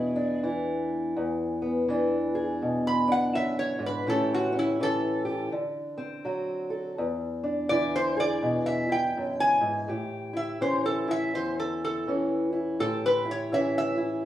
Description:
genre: acoustic country blues, solo or duo.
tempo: 82 BPM.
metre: 4/4.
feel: swing 62% on 8ths.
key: A mixolydian.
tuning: A4 = 440 Hz.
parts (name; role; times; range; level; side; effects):
metal-body resonator slide guitar; melody; 0.0-14.3 s; E4 to B5; -27 LUFS; equal; none.
fingerpicked old ladder-braced acoustic guitar; accompaniment; 0.0-14.3 s; E2 to A4; -27 LUFS; equal; none.
room: wet large studio reverb, RT60 1.0 s.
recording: band playing live in one room.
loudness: -25 LUFS.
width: side -12 dB against mid.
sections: 0.0-9.9 A section; 9.9-14.3 A section.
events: resonator guitar played with a steel bar solo 0.0-9.9, 9.9-14.3.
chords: 0.0 E7; 4.1 A7; 5.5 D7; 7.0 E7; 9.9 A7.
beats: 0.43 | 1.16 1.89 2.61 3.34 | 4.07 4.80 5.52 6.25 | 6.98 7.71 8.43 9.16 | 9.88 10.61 11.34 12.06 | 12.79 13.51 14.24.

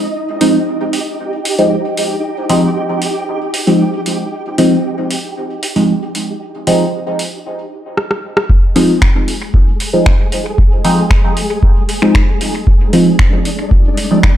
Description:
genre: dub techno.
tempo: 115 BPM.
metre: 4/4.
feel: straight.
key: F dorian.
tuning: A4 = 440 Hz.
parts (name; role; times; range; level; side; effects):
flickering grainy texture; texture; 0.0-14.4 s; Ab3 to Eb5; -22 LUFS; equal; built-in reverb, sidechain pumping.
deep mellow chord stab; stabs; 0.4-14.3 s; F3 to Eb4; -14 LUFS; equal; chorus, phaser, sidechain pumping, dub echo.
deep house drum kit; drums; 0.4-14.3 s; finger snaps, hi-hat, rim click; -19 LUFS; equal; overdrive, studio reverb, dub echo.
electronic kick drum; drums; 8.5-14.3 s; none; -11 LUFS; equal; studio reverb.
room: light reverb, digital ambience.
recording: dark, warm production.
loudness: -11 LUFS.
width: side -12 dB against mid.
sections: 0.0-8.5 A section; 8.5-14.4 B section.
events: filter sweep on synth stab 0.0-8.5; break 7.5-8.5; drum fill 8.0-8.5.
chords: 0.0 Fm7.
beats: | 0.15 0.67 1.19 1.71 | 2.23 2.76 3.28 3.80 | 4.32 4.84 5.37 5.89 | 6.41 6.93 7.45 7.97 | 8.50 9.02 9.54 10.06 | 10.58 11.10 11.63 12.15 | 12.67 13.19 13.71 14.23.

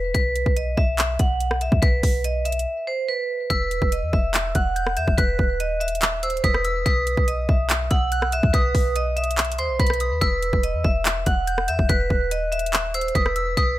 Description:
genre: hip hop, trap.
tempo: 143 BPM.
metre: 4/4.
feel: half-time.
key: E harmonic minor.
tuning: A4 = 440 Hz.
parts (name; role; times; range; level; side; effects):
vibraphone with hard mallets; melody; 0.0-13.8 s; B4 to F#5; -24 LUFS; right 1 dB; auto-pan, low-pass filter.
clean 808-style bass; bass; 0.0-13.8 s; D#1 to E2; -25 LUFS; equal; none.
trap drum kit; drums; 0.1-13.7 s; handclaps, hi-hat, kick drum, rim click; -22 LUFS; equal; none.
soft synth bell; second line; 3.5-13.8 s; B5 to G6; -30 LUFS; equal; chorus, ping-pong delay.
room: digital ambience.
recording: none.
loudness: -19 LUFS.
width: side -15 dB against mid.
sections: 0.0-13.8 A section.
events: break 2.7-3.5.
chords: 0.1 N.C.; 3.5 Esus2; 6.9 B; 10.2 Esus2.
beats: | 0.15 0.56 0.98 1.41 | 1.82 2.24 2.66 3.08 | 3.50 3.92 4.34 4.76 | 5.18 5.60 6.02 6.44 | 6.86 7.28 7.70 8.12 | 8.54 8.96 9.38 9.80 | 10.22 10.63 11.05 11.47 | 11.89 12.31 12.73 13.15 | 13.57.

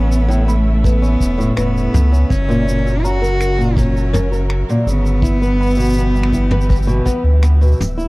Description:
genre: folktronica.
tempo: 82 BPM.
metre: 4/4.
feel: straight.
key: unclear.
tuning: A4 = 440 Hz.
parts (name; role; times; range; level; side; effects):
warm cello; melody; 0.0-7.4 s; A3 to F#4; -21 LUFS; equal; none.
rich string quartet; sustained chords; 0.0-8.1 s; C#3 to A#4; -28 LUFS; right 1 dB; none.
flamenco guitar; arpeggios; 0.0-8.1 s; A2 to B4; -21 LUFS; equal; none.
warm sub bass; bass; 0.0-8.1 s; D1 to D2; -15 LUFS; equal; none.
flickering grainy texture; texture; 0.0-8.1 s; E5 to E6; -36 LUFS; right 2 dB; built-in reverb.
vintage brush drum kit; drums; 0.1-8.1 s; finger snaps, shaker, toms; -24 LUFS; equal; none.
folk marimba with medium mallets; second line; 0.5-7.3 s; A#4 to B5; -29 LUFS; left 3 dB; tape echo.
kick drum; drums; 0.8-7.2 s; none; -17 LUFS; equal; none.
room: little or no reverb.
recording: dry, close 1970s-style studio recording, vinyl crackle.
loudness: -13 LUFS.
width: side -23 dB against mid.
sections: 0.0-8.1 A section.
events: none.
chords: 0.0 Aadd9; 2.3 F#; 5.2 Em/G.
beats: 0.11 0.84 1.57 | 2.30 3.03 3.77 4.50 | 5.23 5.96 6.69 7.42.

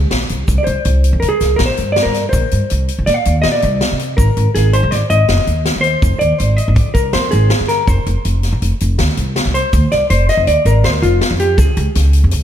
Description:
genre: progressive instrumental, band music in an uneven meter.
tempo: 162 BPM.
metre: 5/4.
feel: straight.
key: C minor.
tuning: A4 = 445 Hz.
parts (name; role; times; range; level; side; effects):
upright bass; bass; 0.0-12.4 s; F1 to C3; -14 LUFS; equal; none.
swinging big-band drum kit; drums; 0.1-12.4 s; hi-hat, kick drum, snare drum; -19 LUFS; equal; none.
egg shaker; percussion; 0.5-11.8 s; none; -35 LUFS; right 6 dB; none.
hollow-body jazz guitar; melody; 0.6-12.4 s; F4 to F5; -17 LUFS; equal; none.
room: light reverb, small room ambience.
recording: none.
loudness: -12 LUFS.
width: side -10 dB against mid.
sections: 0.0-12.4 A section.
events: hollow-body jazz guitar solo 0.0-12.4.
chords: 0.5 C5; 4.2 Ab; 7.9 F5; 11.6 Db5.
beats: 0.11 | 0.48 0.85 1.22 1.59 1.96 | 2.33 2.70 3.07 3.44 3.81 | 4.18 4.55 4.92 5.29 5.66 | 6.03 6.40 6.77 7.14 7.51 | 7.88 8.25 8.62 8.99 9.36 | 9.73 10.10 10.47 10.84 11.21 | 11.58 11.95 12.32.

